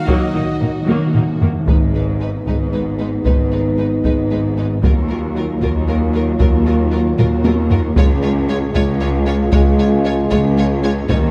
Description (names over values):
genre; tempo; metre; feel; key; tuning
cinematic, epic orchestral film score; 76 BPM (dotted quarters); 6/8; straight; unclear; A4 = 441 Hz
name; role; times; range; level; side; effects
rich symphonic violin section; melody; 0.0-11.2 s; Gb4 to Db5; -32 LUFS; equal; none
rich symphonic violin section; second line; 0.0-11.2 s; Eb4 to Eb5; -34 LUFS; equal; none
mellow French horn section; sustained chords; 0.0-11.3 s; Gb3 to F4; -24 LUFS; equal; none
dark trumpet section; stabs; 0.0-0.9 s; Eb5; -32 LUFS; equal; none
timpani; percussion; 0.0-1.7, 11.1-11.3 s; Eb3; -25 LUFS; equal; none
rich symphonic viola section; accompaniment; 0.1-11.2 s; Gb3 to Eb4; -27 LUFS; equal; none
clear studio double bass section; bass; 0.1-11.3 s; Ab1 to Eb2; -23 LUFS; equal; none
warm symphonic cello section; bass; 0.1-11.3 s; Db2 to Eb3; -24 LUFS; equal; none
taiko ensemble; drums; 0.1-11.3 s; none; -20 LUFS; equal; none
room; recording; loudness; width
moderate scoring stage reverb, RT60 1.7 s; none; -16 LUFS; mono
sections
0.0-1.7 A section; 1.7-11.3 B section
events
timpani fill 0.0-1.7, 11.1; drum fill 0.9-1.7, 7.2-8.0; build-up 1.7-11.3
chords
0.0 Ebm; 1.7 Abm; 4.8 Ebmadd9; 8.0 Db